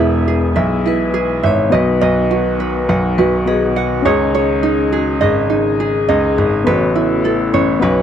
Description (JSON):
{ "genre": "acoustic pop", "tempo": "103 BPM", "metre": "4/4", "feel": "swing 55% on 16ths", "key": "E major", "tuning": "A4 = 439 Hz", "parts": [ { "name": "vibraphone with medium hard mallets", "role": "second line", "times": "0.0-8.0 s", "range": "C#4 to C#5", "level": "-20 LUFS", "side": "left 7 dB", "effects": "none" }, { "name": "overdriven reed electric piano", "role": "accompaniment", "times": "0.0-8.0 s", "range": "B3 to E5", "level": "-21 LUFS", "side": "left 6 dB", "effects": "fast tremolo" }, { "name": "tenor ukulele", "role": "accompaniment", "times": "0.0-8.0 s", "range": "D#4 to F#5", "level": "-18 LUFS", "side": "right 10 dB", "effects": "none" }, { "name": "overdriven tonewheel organ", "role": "sustained chords", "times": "0.0-8.0 s", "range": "B2 to G#4", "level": "-24 LUFS", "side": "right 1 dB", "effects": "slow rotary speaker" }, { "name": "clear baby grand piano", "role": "bass", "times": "0.0-8.0 s", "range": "E1 to C#2", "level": "-18 LUFS", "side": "left 1 dB", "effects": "none" } ], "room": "light reverb", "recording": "dry, close 1970s-style studio recording", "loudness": "-13 LUFS", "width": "side -9 dB against mid", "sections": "0.0-8.0 A section", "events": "none", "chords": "0.0 E; 1.7 B; 4.1 C#sus2; 6.7 Aadd9" }